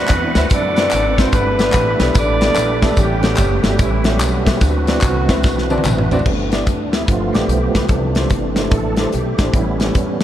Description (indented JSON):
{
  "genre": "uptempo gospel",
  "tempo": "146 BPM",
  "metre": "4/4",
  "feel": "swing 65% on 8ths",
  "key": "G major",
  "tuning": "A4 = 440 Hz",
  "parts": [
    { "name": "mellow horn section", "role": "melody", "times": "0.0-5.8 s", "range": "E3 to D5", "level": "-20 LUFS", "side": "right 1 dB", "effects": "tape echo" },
    { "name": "warm baby grand piano", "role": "accompaniment", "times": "0.0-10.2 s", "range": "G2 to A5", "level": "-23 LUFS", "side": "left 2 dB", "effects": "none" },
    { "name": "bright tonewheel organ", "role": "sustained chords", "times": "0.0-10.2 s", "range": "E3 to F#5", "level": "-21 LUFS", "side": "right 2 dB", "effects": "slow rotary speaker, chorus vibrato" },
    { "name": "upright bass", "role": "bass", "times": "0.0-10.2 s", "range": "F#1 to F#2", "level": "-20 LUFS", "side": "equal", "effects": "none" },
    { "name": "modern studio drum kit", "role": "drums", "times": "0.1-10.2 s", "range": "crash cymbal, hi-hat, kick drum, snare drum, toms", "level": "-18 LUFS", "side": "equal", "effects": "none" },
    { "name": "handclaps and tambourine", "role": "percussion", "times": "0.1-6.2 s", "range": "none", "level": "-27 LUFS", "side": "left 3 dB", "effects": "none" }
  ],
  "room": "wet cathedral reverb, RT60 5.4 s",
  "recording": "dreamy mix soaked in reverb",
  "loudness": "-13 LUFS",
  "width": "side -11 dB against mid",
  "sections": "0.0-6.3 A section; 6.3-10.2 B section",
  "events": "drum fill 5.4-6.3; grand piano fill 5.4-6.3; tonewheel organ solo 6.3-10.2",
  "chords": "0.0 D13; 1.3 G69; 3.0 A13; 4.6 D13; 6.3 G6; 7.1 G7; 7.9 C6; 9.5 A7"
}